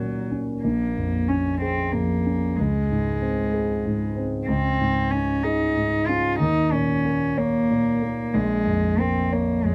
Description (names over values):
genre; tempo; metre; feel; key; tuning
neoclassical piano and strings; 62 BPM (dotted quarters); 6/8; rubato; Db major; A4 = 443 Hz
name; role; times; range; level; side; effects
warm cello; second line; 0.0-9.7 s; Gb3 to F4; -26 LUFS; equal; none
warm concert grand piano; accompaniment; 0.0-9.7 s; Bb1 to Db5; -26 LUFS; equal; none
room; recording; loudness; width
light reverb; close, detailed microphones; -23 LUFS; mono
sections
0.0-9.7 A section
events
none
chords
0.0 Ebm7; 0.6 Bbm7; 2.6 Db5; 6.4 Eb5; 8.3 Bbm7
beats
| 0.64 1.61 | 2.58 3.53 | 4.48 5.44 | 6.40 7.37 | 8.35 9.33